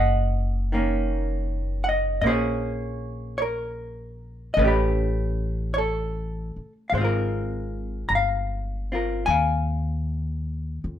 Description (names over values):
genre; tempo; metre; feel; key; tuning
jazz ballad; 51 BPM; 4/4; swing 68% on 8ths; unclear; A4 = 440 Hz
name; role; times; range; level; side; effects
vintage hollow-body jazz guitar; accompaniment; 0.0-11.0 s; D#3 to Bb5; -25 LUFS; equal; none
upright bass; bass; 0.0-11.0 s; F#1 to F2; -26 LUFS; left 1 dB; none
room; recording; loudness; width
light reverb; minimal, uncompressed stereo recording; -23 LUFS; side -10 dB against mid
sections
0.0-11.0 A section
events
none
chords
0.0 Bmaj9 (rootless); 2.2 Bbm9; 4.6 A9; 6.9 Ab69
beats
1.07 | 2.23 3.40 4.57 5.75 | 6.93 8.11 9.28 10.46